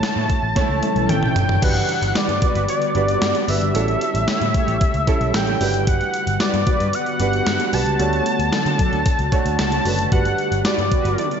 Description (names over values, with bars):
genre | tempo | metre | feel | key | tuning
1980s-style pop | 113 BPM | 4/4 | straight | unclear | A4 = 440 Hz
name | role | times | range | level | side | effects
octave-doubled lead | melody | 0.0-11.4 s | D5 to A5 | -22 LUFS | left 1 dB | chorus, ping-pong delay, slapback echo
clear concert grand piano | accompaniment | 0.0-11.4 s | G3 to C#5 | -25 LUFS | right 4 dB | slapback echo
ethereal airy pad | sustained chords | 0.0-11.4 s | C#3 to C#5 | -28 LUFS | equal | ensemble chorus, built-in reverb, tremolo
vintage muted picked electric bass | bass | 0.0-11.1 s | F#1 to D3 | -23 LUFS | equal | none
clean 12-bit digital drum machine | drums | 0.0-11.4 s | crash cymbal, hi-hat, kick drum, snare drum, tambourine, toms | -22 LUFS | equal | none
mellow synth brass | stabs | 0.2-11.3 s | E3 to C#5 | -28 LUFS | equal | chorus, slapback echo
room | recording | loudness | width
wet lush hall reverb, RT60 1.8 s, digital ambience | big arena sound, nothing above 7.7 kHz | -17 LUFS | side -7 dB against mid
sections
0.0-1.6 A section; 1.6-11.4 B section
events
band accent 0.0-1.6; drum fill 0.6-1.6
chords
0.0 A; 1.6 Gmaj7; 3.7 A7; 5.6 Gmaj7; 8.0 Dmaj7; 10.1 Gmaj7